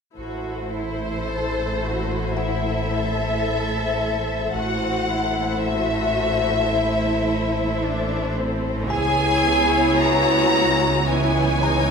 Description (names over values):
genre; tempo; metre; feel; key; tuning
cinematic; 55 BPM; 4/4; straight; A dorian; A4 = 439 Hz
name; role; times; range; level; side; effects
dark chamber violin section; second line; 0.2-11.9 s; G#4 to C#5; -27 LUFS; left 4 dB; none
rich chamber viola section; accompaniment; 0.2-11.9 s; E3 to E4; -26 LUFS; right 2 dB; none
rich studio cello section; bass; 0.2-11.9 s; C4 to A4; -28 LUFS; right 3 dB; none
warm chamber double bass section; bass; 0.2-11.9 s; A1 to C#2; -29 LUFS; right 2 dB; none
sub bass with octave; drone; 0.2-11.9 s; A1 to C#2; -29 LUFS; equal; none
warm symphonic violin section; melody; 0.7-11.9 s; C5 to Bb5; -24 LUFS; left 3 dB; none
music box; texture; 2.4-11.9 s; F#5 to Bb5; -31 LUFS; left 2 dB; none
room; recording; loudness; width
wet recital hall reverb, RT60 1.7 s; recorded in a church or concert hall; -19 LUFS; side -6 dB against mid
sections
0.2-11.9 A section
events
none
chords
0.2 Am; 8.9 C#m7